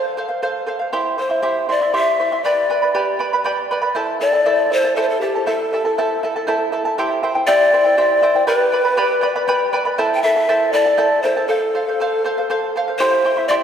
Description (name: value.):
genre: andean folk, Andean ensemble.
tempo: 80 BPM (dotted quarters).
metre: 6/8.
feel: straight.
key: A minor.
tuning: A4 = 440 Hz.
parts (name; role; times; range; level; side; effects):
breathy mellow large pan pipes; melody; 0.0-13.5 s; G4 to G5; -17 LUFS; left 2 dB; none.
charango; accompaniment; 0.0-13.6 s; E4 to C6; -19 LUFS; right 2 dB; none.
room: wet concert hall reverb, RT60 2.4 s.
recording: recorded in a church or concert hall.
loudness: -15 LUFS.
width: side -8 dB against mid.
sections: 0.0-7.0 A section; 7.0-13.6 A section.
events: none.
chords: 0.0 F; 0.9 C; 2.5 G; 4.0 Am; 7.0 C; 8.5 G; 10.0 Am; 11.5 F; 13.0 C.